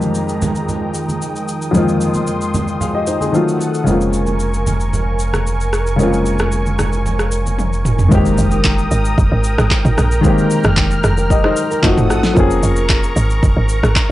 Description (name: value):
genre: amapiano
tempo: 113 BPM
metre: 4/4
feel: straight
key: F minor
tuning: A4 = 440 Hz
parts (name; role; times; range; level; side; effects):
- warm baby grand piano; accompaniment; 0.0-14.1 s; F2 to F5; -17 LUFS; left 1 dB; none
- warm analog pad; sustained chords; 0.0-14.1 s; Eb3 to F6; -23 LUFS; right 1 dB; chorus
- deep house drum kit; drums; 0.0-14.1 s; handclaps, kick drum, rim click, shaker, snare drum, toms; -18 LUFS; right 1 dB; none
- congas; percussion; 0.0-7.6 s; none; -25 LUFS; right 2 dB; none
- sub bass with octave; bass; 3.9-8.1 s; F1; -19 LUFS; equal; none
- woody log drum bass; bass; 8.1-13.9 s; F1 to Bb1; -16 LUFS; equal; none
- impact; sound effects; 8.1-10.2 s; none; -26 LUFS; right 1 dB; none
room: light reverb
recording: dry, gritty hardware recording, nothing above 10.9 kHz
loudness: -13 LUFS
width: side -15 dB against mid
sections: 0.0-8.1 A section; 8.1-14.1 B section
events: drum fill 7.6-8.1; drop 8.1-14.1; impact 8.1-10.2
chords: 0.0 Fm11; 3.3 F7b9; 3.9 Bbm7/F; 8.1 Fm11; 11.8 F7b9; 12.4 Bbm7/F